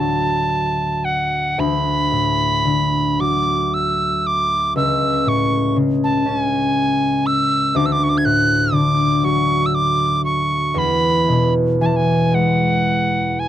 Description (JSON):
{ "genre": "celtic folk, Celtic slow air", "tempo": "37-41 BPM (dotted quarters)", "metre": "6/8", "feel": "rubato", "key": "unclear", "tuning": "A4 = 441 Hz", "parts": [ { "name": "bright wooden whistle", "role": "melody", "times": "0.0-13.5 s", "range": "F#5 to G#6", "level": "-19 LUFS", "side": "right 2 dB", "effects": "none" }, { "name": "concert harp", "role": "accompaniment", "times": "0.0-13.5 s", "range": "C#2 to C#4", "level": "-18 LUFS", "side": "left 1 dB", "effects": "none" } ], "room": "light reverb", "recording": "dry, close 1970s-style studio recording", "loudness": "-15 LUFS", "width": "side -11 dB against mid", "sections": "0.0-13.5 A section", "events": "none", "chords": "0.0 D; 4.8 A/C#; 7.7 D; 10.8 E" }